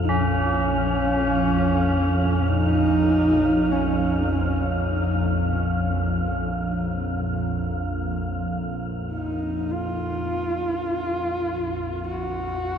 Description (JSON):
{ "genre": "dark ambient drone", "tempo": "free time", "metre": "none", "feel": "none", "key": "Bb minor", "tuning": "A4 = 440 Hz", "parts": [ { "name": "dark horsehead fiddle", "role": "melody", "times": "0.0-12.8 s", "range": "C4 to Gb4", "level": "-25 LUFS", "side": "equal", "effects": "ping-pong delay" }, { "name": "organ-like drone", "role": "drone", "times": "0.0-12.8 s", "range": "Bb1 to F2", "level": "-24 LUFS", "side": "equal", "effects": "ensemble chorus, built-in reverb" }, { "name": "wind-like tuned noise texture", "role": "texture", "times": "0.0-12.8 s", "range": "F5", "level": "-32 LUFS", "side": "right 2 dB", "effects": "built-in reverb" }, { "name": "tubular bells", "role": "arpeggios", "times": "0.1-12.8 s", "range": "Db4", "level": "-31 LUFS", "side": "left 1 dB", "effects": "ping-pong delay" } ], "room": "wet huge ambient reverb, RT60 7.5 s", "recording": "dark, warm production, lossy compression artefacts", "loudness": "-21 LUFS", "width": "side -8 dB against mid", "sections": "0.0-12.8 A section", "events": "fade-out 6.5-12.8", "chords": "0.0 Bbm", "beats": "free time" }